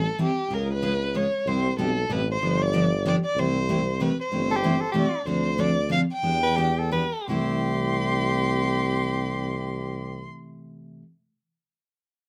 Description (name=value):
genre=acoustic string swing (jazz manouche)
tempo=161-190 BPM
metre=3/4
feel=swing 61% on 8ths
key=C major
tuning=A4 = 436 Hz
part: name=warm violin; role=melody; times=0.0-10.3 s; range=G4 to C6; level=-30 LUFS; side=equal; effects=none
part: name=warm tuba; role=bass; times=0.0-10.3 s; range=G1 to E2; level=-30 LUFS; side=equal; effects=none
part: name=picked steel-string acoustic guitar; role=accompaniment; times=0.2-11.0 s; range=C3 to A4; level=-30 LUFS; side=equal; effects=none
part: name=edgy soprano saxophone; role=second line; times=4.5-10.3 s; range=G4 to B4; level=-31 LUFS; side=equal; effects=none
room=moderate club reverb, RT60 0.7 s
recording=none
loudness=-25 LUFS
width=mono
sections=0.0-5.3 A section; 5.3-7.3 B section; 7.3-9.5 C section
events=slowing down 5.3-7.3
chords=0.0 Am7; 0.5 Db7; 1.5 Cmaj7; 2.4 G7; 3.4 C6; 5.3 Dm7; 6.2 Em7; 7.3 C6